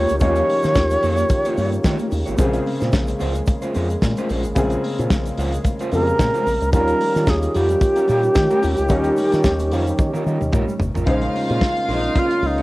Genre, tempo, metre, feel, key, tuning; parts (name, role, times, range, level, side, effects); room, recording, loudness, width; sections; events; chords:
disco; 111 BPM; 4/4; swing 56% on 16ths; Bb dorian; A4 = 440 Hz
bright reedy wooden-headed alto flute; melody; 0.0-2.1, 5.9-12.6 s; Eb4 to Db5; -20 LUFS; equal
electric guitar at the edge of break-up; accompaniment; 0.0-12.6 s; G3 to Db5; -28 LUFS; right 2 dB; wide subtle chorus, cassette tape
warm grand piano; accompaniment; 0.0-12.6 s; C3 to C5; -26 LUFS; left 1 dB; cassette tape
warm French horn section; sustained chords; 0.0-12.6 s; Db3 to G4; -26 LUFS; right 1 dB; cassette tape
fingered electric bass with an envelope filter; bass; 0.0-12.6 s; G1 to Eb3; -23 LUFS; equal
warm soul drum kit; drums; 0.1-12.6 s; hi-hat, kick drum, snare drum, toms; -22 LUFS; equal; cassette tape
tube shaker; percussion; 0.1-11.1 s; -46 LUFS; right 5 dB
congas; percussion; 0.2-12.6 s; -32 LUFS; left 3 dB
clear studio string section; second line; 11.1-12.6 s; F4 to F5; -24 LUFS; equal; cassette tape
light reverb, small room ambience; home recording on cassette; -16 LUFS; side -19 dB against mid
0.0-11.1 A section; 11.1-12.6 B section
drum fill 10.0-11.1; alto flute solo 11.1-12.6
0.0 Eb9; 2.4 Bbm9; 6.7 Eb9; 11.1 Bbm11